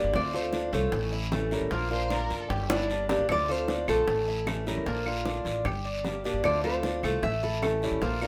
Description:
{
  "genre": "latin, Cuban son and guajira",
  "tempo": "152 BPM",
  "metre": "4/4",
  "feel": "straight",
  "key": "D minor",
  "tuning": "A4 = 439 Hz",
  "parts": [
    { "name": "fingerpicked acoustic archtop guitar", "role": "accompaniment", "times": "0.0-8.3 s", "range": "D3 to G4", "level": "-36 LUFS", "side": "equal", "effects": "none" },
    { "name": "Cuban tres", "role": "arpeggios", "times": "0.0-8.3 s", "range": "A3 to A4", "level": "-34 LUFS", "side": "equal", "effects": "none" },
    { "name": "upright bass", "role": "bass", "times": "0.0-8.3 s", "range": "G1 to F2", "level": "-35 LUFS", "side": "equal", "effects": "none" },
    { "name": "bongos", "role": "percussion", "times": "0.1-8.3 s", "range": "none", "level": "-37 LUFS", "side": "equal", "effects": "none" },
    { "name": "guiro", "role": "percussion", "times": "0.1-8.3 s", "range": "none", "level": "-43 LUFS", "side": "equal", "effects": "none" },
    { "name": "nylon-string guitar", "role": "melody", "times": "0.2-8.3 s", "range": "A4 to E5", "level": "-33 LUFS", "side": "equal", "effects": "none" },
    { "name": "warm chamber violin section", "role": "second line", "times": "1.9-3.2 s", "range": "D4 to C5", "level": "-38 LUFS", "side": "equal", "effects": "none" },
    { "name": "claves", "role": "percussion", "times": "3.3-8.3 s", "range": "none", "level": "-40 LUFS", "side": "equal", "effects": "none" }
  ],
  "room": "wet studio reverb, RT60 0.6 s",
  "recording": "none",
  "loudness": "-28 LUFS",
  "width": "mono",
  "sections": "0.0-8.3 A section",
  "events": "drum fill 2.7-3.3",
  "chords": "0.1 Dm7; 0.9 A7; 1.7 Bb; 2.5 Gm; 3.3 Dm7; 4.1 A7; 4.9 Bb; 5.7 Gm; 6.4 Dm7; 7.2 A7",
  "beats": "| 0.14 0.53 0.93 1.32 | 1.72 2.11 2.50 2.90 | 3.29 3.69 4.08 4.47 | 4.87 5.26 5.66 6.05 | 6.45 6.84 7.23 7.63 | 8.02"
}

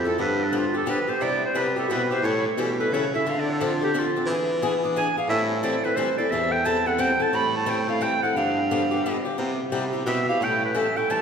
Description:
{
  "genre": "acoustic string swing (jazz manouche)",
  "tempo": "176 BPM",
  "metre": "3/4",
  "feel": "swing 62% on 8ths",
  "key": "A minor",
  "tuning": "A4 = 440 Hz",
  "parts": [
    { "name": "bright clarinet", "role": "melody", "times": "0.0-11.2 s", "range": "D4 to B5", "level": "-25 LUFS", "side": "right 2 dB", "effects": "none" },
    { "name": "picked swing-style acoustic guitar", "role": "accompaniment", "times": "0.0-11.2 s", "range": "C3 to A4", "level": "-26 LUFS", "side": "left 2 dB", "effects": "none" },
    { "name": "clear baritone saxophone", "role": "bass", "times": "0.0-11.0 s", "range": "E2 to E3", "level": "-27 LUFS", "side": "equal", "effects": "none" }
  ],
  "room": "wet concert hall reverb, RT60 2.4 s",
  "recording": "recorded in a church or concert hall",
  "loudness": "-21 LUFS",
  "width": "side -6 dB against mid",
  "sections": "0.0-7.3 A section; 7.3-11.2 A section",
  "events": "clarinet solo 0.0-11.2",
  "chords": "0.2 G7; 1.2 Cmaj7; 2.2 A7; 3.3 Dm7; 4.3 E7; 5.3 Am7; 8.4 G7; 9.4 Cmaj7; 10.4 A7",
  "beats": "| 0.19 0.53 0.87 | 1.21 1.55 1.89 | 2.23 2.57 2.91 | 3.25 3.59 3.93 | 4.27 4.61 4.95 | 5.29 5.63 5.97 | 6.31 6.65 6.99 | 7.33 7.68 8.02 | 8.36 8.70 9.04 | 9.38 9.72 10.07 | 10.41 10.75 11.09"
}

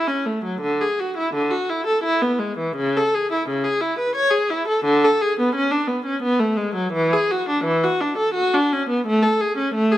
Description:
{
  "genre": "classical, baroque-style suite movement for unaccompanied viola",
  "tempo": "86 BPM",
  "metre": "3/4",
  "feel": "rubato",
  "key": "A major",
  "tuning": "A4 = 440 Hz",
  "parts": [
    { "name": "rich viola", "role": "solo", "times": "0.0-10.0 s", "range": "C#3 to C#5", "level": "-18 LUFS", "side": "equal", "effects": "none" }
  ],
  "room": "moderate large studio reverb, RT60 1.5 s",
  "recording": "minimal, uncompressed stereo recording",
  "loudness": "-18 LUFS",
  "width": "side -13 dB against mid",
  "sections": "0.0-10.0 A section",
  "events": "none",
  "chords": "none",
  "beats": "| 0.61 1.32 2.03 | 2.77 3.48 4.17 | 4.87 5.54 6.21 | 6.93 7.66 8.36 | 9.05 9.74"
}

